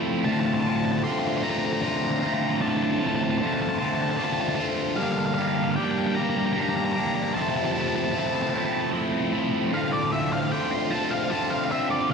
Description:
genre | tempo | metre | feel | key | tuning
rock | 51 BPM (dotted quarters) | 6/8 | straight | D minor | A4 = 439 Hz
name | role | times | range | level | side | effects
cranked stack guitar | riff | 0.0-12.1 s | D2 to G4 | -24 LUFS | equal | overdrive, phaser
octave-fuzz lead guitar | melody | 0.2-12.1 s | D5 to C6 | -29 LUFS | equal | distortion, slapback echo
room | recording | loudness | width
moderate huge ambient reverb, RT60 4.8 s | dark, warm production | -23 LUFS | side -5 dB against mid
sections
0.0-12.1 A section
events
none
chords
0.3 Dm7; 5.0 Gm7; 7.4 Fmaj7; 9.7 Dm7

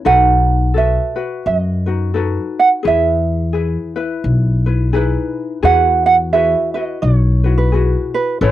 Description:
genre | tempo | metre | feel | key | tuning
Hawaiian | 86 BPM | 4/4 | swing 60% on 8ths | E major | A4 = 440 Hz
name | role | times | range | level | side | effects
ukulele | melody | 0.0-8.5 s | B4 to F#5 | -15 LUFS | right 5 dB | cassette tape
ukulele | accompaniment | 0.0-8.5 s | C#4 to C#5 | -21 LUFS | left 7 dB | none
upright bass | bass | 0.1-8.5 s | A1 to F#2 | -16 LUFS | left 1 dB | tube saturation
room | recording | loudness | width
moderate studio ambience, RT60 0.5 s | home recording on cassette | -13 LUFS | side -13 dB against mid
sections
0.0-5.6 A section; 5.6-8.5 A section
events
none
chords
0.1 B7; 2.8 Emaj7; 5.6 Eadd9

